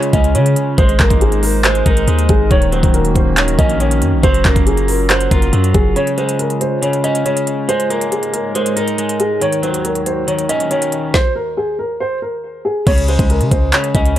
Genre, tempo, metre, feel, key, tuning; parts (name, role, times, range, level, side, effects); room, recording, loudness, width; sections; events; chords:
hip hop, trap; 139 BPM; 4/4; half-time; Db major; A4 = 441 Hz
dark concert grand piano; melody; 0.0-14.2 s; Ab4 to Eb5; -18 LUFS; right 1 dB; low-pass filter, tape echo
electric guitar at the edge of break-up; accompaniment; 0.0-14.2 s; Db3 to F4; -20 LUFS; left 2 dB; low-pass filter
warbly tape-like pad; sustained chords; 0.0-11.1 s; Eb2 to Db5; -22 LUFS; right 1 dB; chorus, built-in reverb
trap drum kit; drums; 0.0-14.2 s; crash cymbal, handclaps, hi-hat, kick drum, snare drum; -15 LUFS; equal; overdrive
long sustained 808-style bass; bass; 0.1-6.0, 12.9-14.2 s; Eb1 to Db3; -16 LUFS; equal
little or no reverb; dry, gritty hardware recording; -12 LUFS; side -12 dB against mid
0.0-6.0 A section; 6.0-12.9 B section; 12.9-14.2 C section
0.0 Db; 0.8 Abadd9; 2.5 Ebm7; 4.2 Gbmaj7; 6.0 Db; 7.7 Absus2; 9.4 Ebm7; 11.1 N.C.; 12.9 Db5